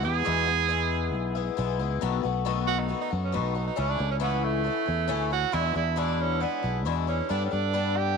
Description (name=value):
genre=folk rock and heartland rock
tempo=136 BPM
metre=4/4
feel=straight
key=unclear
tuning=A4 = 438 Hz
part: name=clear tenor saxophone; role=melody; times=0.0-8.2 s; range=A3 to G#4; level=-28 LUFS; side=right 12 dB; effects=none
part: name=picked twelve-string acoustic guitar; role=accompaniment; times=0.0-8.2 s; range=E2 to A4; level=-30 LUFS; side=left 13 dB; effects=none
part: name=fingered electric bass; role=bass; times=0.0-8.2 s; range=B1 to G2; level=-29 LUFS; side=equal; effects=none
room=moderate spring reverb, RT60 2.5 s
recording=1960s-style stereo with parts hard left and right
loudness=-24 LUFS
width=side -5 dB against mid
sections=0.0-2.0 A section; 2.0-8.2 B section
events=none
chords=0.0 E; 2.0 B7; 3.8 A/C#; 5.5 E7; 7.3 Gadd9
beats=| 0.26 0.70 1.14 1.58 | 2.02 2.46 2.90 3.34 | 3.78 4.22 4.66 5.10 | 5.54 5.98 6.42 6.86 | 7.30 7.74